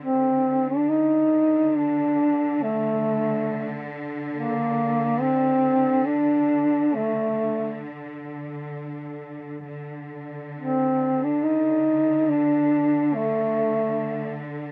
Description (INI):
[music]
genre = caucasian folk, Caucasian lament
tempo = free time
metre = none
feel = none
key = unclear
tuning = A4 = 441 Hz
[part]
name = mellow duduk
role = melody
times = 0.0-14.4 s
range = A3 to Eb4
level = -23 LUFS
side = equal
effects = none
[part]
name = bright symphonic cello section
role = drone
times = 0.0-14.7 s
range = D3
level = -34 LUFS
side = equal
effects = none
[sound]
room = little or no reverb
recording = dry, close 1970s-style studio recording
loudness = -23 LUFS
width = mono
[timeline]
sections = 0.0-14.7 A section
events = none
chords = none